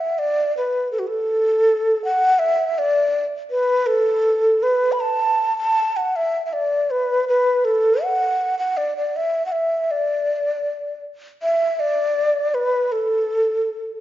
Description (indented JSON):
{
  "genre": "chinese traditional",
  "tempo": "80 BPM",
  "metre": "2/4",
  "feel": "straight",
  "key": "D gong mode",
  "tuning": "A4 = 440 Hz",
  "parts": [
    { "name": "breathy xiao", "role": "solo", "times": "0.0-14.0 s", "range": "F#4 to B5", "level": "-18 LUFS", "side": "equal", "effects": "none" }
  ],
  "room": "wet recital hall reverb, RT60 1.6 s",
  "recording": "nothing above 7.5 kHz",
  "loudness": "-18 LUFS",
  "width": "side -13 dB against mid",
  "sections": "0.0-11.4 A section; 11.4-14.0 B section",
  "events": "none",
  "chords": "none"
}